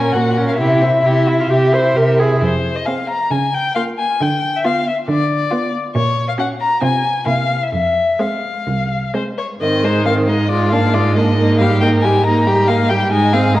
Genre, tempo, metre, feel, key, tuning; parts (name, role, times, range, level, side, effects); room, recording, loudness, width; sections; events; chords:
quick classical-period movement for string quartet; 126-140 BPM; 4/4; rubato; A4 = 440 Hz
rich violin; melody; 0.0-13.6 s; C5 to Bb5; -18 LUFS; left 4 dB
clear violin; second line; 0.0-13.6 s; C4 to Bb4; -22 LUFS; left 1 dB
rich viola; accompaniment; 0.0-13.6 s; Eb3 to C5; -18 LUFS; right 1 dB
rich cello; bass; 0.0-13.6 s; C2 to D3; -18 LUFS; right 2 dB
wet recital hall reverb, RT60 1.7 s; worn, warbling old tape, cassette tape, warbly pitch drift; -14 LUFS; side -15 dB against mid
0.0-9.6 A section; 9.6-13.6 B section
0.0 Gb/Bb; 0.6 C; 2.4 Fm; 3.3 Bbm/Db; 4.2 Dm6; 5.9 Gb/Bb; 6.8 Fm/C; 7.3 C7; 7.7 Fm; 9.6 Ab; 10.5 Bb7/Ab; 11.4 Eb/Ab